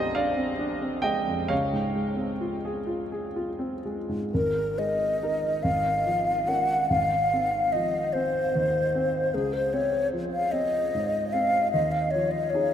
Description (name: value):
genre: classical, impressionist duo for flute and grand piano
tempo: 41-51 BPM (dotted quarters)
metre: 6/8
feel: rubato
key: Ab major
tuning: A4 = 439 Hz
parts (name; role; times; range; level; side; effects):
- warm grand piano; accompaniment; 0.0-12.7 s; Ab1 to G5; -28 LUFS; equal; none
- mellow hollow concert flute; melody; 4.3-12.7 s; Ab4 to Gb5; -24 LUFS; left 1 dB; none
room: wet huge ambient reverb, RT60 7.9 s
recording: in a vast, echoing space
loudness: -24 LUFS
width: side -9 dB against mid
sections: 0.0-4.3 A section; 4.3-12.7 B section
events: none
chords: 0.0 Bb13; 1.5 Dbmaj7; 4.3 Absus2; 5.6 Bbm7/Ab; 6.9 Ab6; 9.3 Dbmaj7; 11.7 Ebsus24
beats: 0.15 | 1.51 2.88 | 4.31 5.62 | 6.89 8.12 | 9.33 10.53 | 11.73